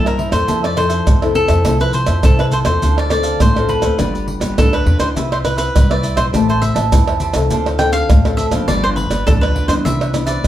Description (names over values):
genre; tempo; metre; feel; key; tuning
samba and choro; 102 BPM; 4/4; straight; C major; A4 = 438 Hz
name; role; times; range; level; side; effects
cavaquinho; melody; 0.0-10.5 s; A4 to G5; -20 LUFS; equal; slapback echo, plate reverb
cavaquinho; accompaniment; 0.0-10.5 s; D4 to A5; -25 LUFS; right 5 dB; none
nylon-string guitar; accompaniment; 0.0-10.5 s; G2 to B4; -21 LUFS; left 3 dB; none
upright bass; bass; 0.0-10.5 s; G1 to G2; -19 LUFS; equal; none
maracas, pandeiro, tamborim and surdo; percussion; 0.1-10.5 s; none; -17 LUFS; right 1 dB; none
room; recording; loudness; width
wet studio reverb, RT60 0.5 s; heard from further back in the room; -13 LUFS; side -12 dB against mid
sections
0.0-10.5 A section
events
none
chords
0.5 Fmaj7; 2.8 Dm7; 4.0 G7; 5.2 Cmaj7; 6.3 Am9; 7.5 Dm7; 8.7 G7; 9.9 Cmaj9